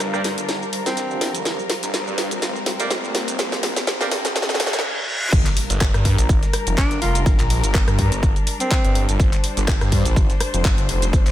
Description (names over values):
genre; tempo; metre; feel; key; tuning
bass house; 124 BPM; 4/4; swing 55% on 16ths; G minor; A4 = 439 Hz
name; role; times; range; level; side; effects
muted studio string section; sustained chords; 0.0-11.3 s; G3 to C5; -29 LUFS; left 3 dB; sidechain pumping, low-pass filter
phased detuned saw bass; bass; 0.0-11.3 s; F1 to G2; -23 LUFS; equal; phaser, sidechain pumping, high-pass filter
electronic snare drum and tambourine; drums; 0.0-11.3 s; none; -37 LUFS; equal; none
garage drum kit; drums; 0.0-11.3 s; crash cymbal, handclaps, hi-hat, rim click, shaker, snare drum; -24 LUFS; equal; high-pass filter on snare, high-pass filter on hats, high-pass filter on perc, high-pass filter on cymbals
riser, reverse cymbal and impact; sound effects; 1.4-7.3 s; none; -29 LUFS; equal; none
ethereal airy pad; texture; 0.0-4.8 s; G4 to Bb5; -33 LUFS; right 2 dB; ensemble chorus, built-in reverb, sidechain pumping
bright horn section; stabs; 0.1-4.1 s; Bb3 to D5; -29 LUFS; right 3 dB; sidechain pumping, low-pass filter, dub echo
breathy alto saxophone; melody; 0.9-1.3, 6.8-9.1 s; C4 to F4; -26 LUFS; right 1 dB; dub echo
electronic kick drum; drums; 5.3-11.2 s; none; -18 LUFS; equal; overdrive
room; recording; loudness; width
light reverb, digital ambience; high-pass filter; -17 LUFS; side -13 dB against mid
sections
0.0-5.3 A section; 5.3-11.3 B section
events
build-up 0.0-5.3; drum fill 0.0-4.8; riser 1.4-4.8; reverse cymbal 4.4-5.3; break 4.8-5.3; drop 5.3-11.3; impact 5.3-7.3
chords
0.0 Gm